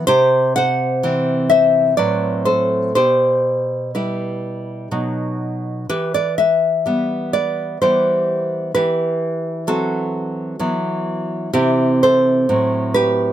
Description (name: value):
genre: romantic piece for solo classical guitar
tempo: 63 BPM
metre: 3/4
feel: uneven beats, rubato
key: E minor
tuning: A4 = 437 Hz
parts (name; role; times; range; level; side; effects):
- nylon-string guitar; solo; 0.0-13.3 s; A2 to F#5; -16 LUFS; equal; none
room: light reverb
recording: close, detailed microphones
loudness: -16 LUFS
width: side -11 dB against mid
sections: 0.0-13.3 A section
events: none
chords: 0.1 C; 2.0 F#dim/A; 2.9 Em/B; 4.9 B; 5.9 Em; 8.7 F#dim/E; 10.6 B5/E; 11.5 C; 12.5 F#dim/A